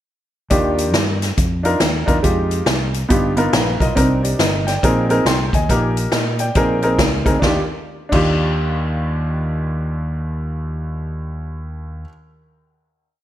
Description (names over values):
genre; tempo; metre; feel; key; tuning
uptempo gospel; 139 BPM; 4/4; swing 62% on 8ths; Eb major; A4 = 441 Hz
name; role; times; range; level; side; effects
warm concert grand piano; accompaniment; 0.5-12.1 s; Eb2 to C6; -19 LUFS; equal; none
fingered electric bass; bass; 0.5-12.0 s; G1 to Bb2; -22 LUFS; equal; none
swinging big-band drum kit; drums; 0.5-8.2 s; crash cymbal, hi-hat, kick drum, snare drum; -19 LUFS; equal; gated reverb
room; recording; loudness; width
light reverb, studio reverb; bright 1980s-style digital production; -16 LUFS; side -12 dB against mid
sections
0.5-7.4 breakdown; 7.4-10.9 final chord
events
grand piano fill 3.3-4.0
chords
0.5 Ebmaj9; 2.2 Fm9; 3.1 G7alt; 4.0 Cm9; 4.8 Bb9sus4; 5.7 Eb/Bb; 6.6 Bb9sus4; 7.4 Ebmaj9